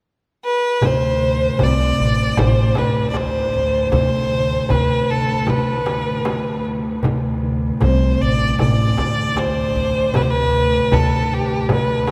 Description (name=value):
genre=Turkish makam ensemble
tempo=77 BPM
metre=4/4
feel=straight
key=D makam hicaz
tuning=A4 = 442 Hz
part: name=rich violin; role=melody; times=0.4-12.1 s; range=G4 to D5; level=-22 LUFS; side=equal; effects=none
part: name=upright bass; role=bass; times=0.8-12.1 s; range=A1 to D3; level=-24 LUFS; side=equal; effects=none
part: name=clear cello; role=drone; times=0.8-12.1 s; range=D2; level=-28 LUFS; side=equal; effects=none
part: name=darbuka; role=percussion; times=0.8-12.1 s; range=none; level=-26 LUFS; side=equal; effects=none
part: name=frame drum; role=percussion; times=0.8-12.1 s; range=none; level=-28 LUFS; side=equal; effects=none
room=wet cathedral reverb, RT60 5.5 s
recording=recorded in a church or concert hall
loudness=-18 LUFS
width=mono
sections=0.8-12.1 A section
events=none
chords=none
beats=0.04 | 0.82 1.60 2.38 3.16 | 3.93 4.71 5.49 6.27 | 7.04 7.82 8.60 9.37 | 10.15 10.92 11.70